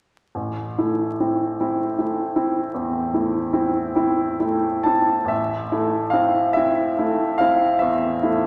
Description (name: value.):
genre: classical, romantic nocturne for solo piano.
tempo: 43-52 BPM (dotted quarters).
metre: 12/8.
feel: rubato.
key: A minor.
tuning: A4 = 441 Hz.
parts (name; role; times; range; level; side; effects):
bright baby grand piano; solo; 0.3-8.5 s; A1 to A5; -21 LUFS; equal; none.
room: wet scoring stage reverb, RT60 1.6 s.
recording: vinyl crackle.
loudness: -21 LUFS.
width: mono.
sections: 0.3-5.3 A section; 5.3-8.5 B section.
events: none.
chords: 0.3 Am.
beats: | 0.34 1.58 2.74 3.97 | 5.30 6.55 7.82.